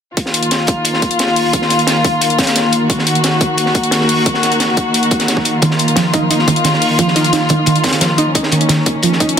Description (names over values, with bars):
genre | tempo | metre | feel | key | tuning
dark technical drum and bass | 176 BPM | 4/4 | straight | Eb minor | A4 = 441 Hz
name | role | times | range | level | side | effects
warm chamber string section | sustained chords | 0.2-9.4 s | Eb3 to Gb4 | -14 LUFS | left 1 dB | vintage 12-bit sampler grit, sidechain pumping, low-pass filter
crunchy breakbeat drum kit | drums | 0.2-9.4 s | hi-hat, snare drum | -20 LUFS | right 1 dB | high-pass filter on hats, high-pass filter on snare, high-pass filter on room
electronic hi-hat | drums | 0.2-9.4 s | none | -19 LUFS | left 3 dB | none
electronic kick drum | drums | 0.2-9.3 s | none | -16 LUFS | right 1 dB | overdrive, high-pass filter on kick
warbly dusty pluck | arpeggios | 5.6-9.4 s | Eb3 to Eb4 | -15 LUFS | right 3 dB | chorus, cassette tape, sidechain pumping, digital delay
room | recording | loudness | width
moderate lush hall reverb, RT60 2.0 s | dense, heavily limited modern master | -11 LUFS | side -8 dB against mid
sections
0.2-9.4 A section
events
none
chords
0.2 Ebm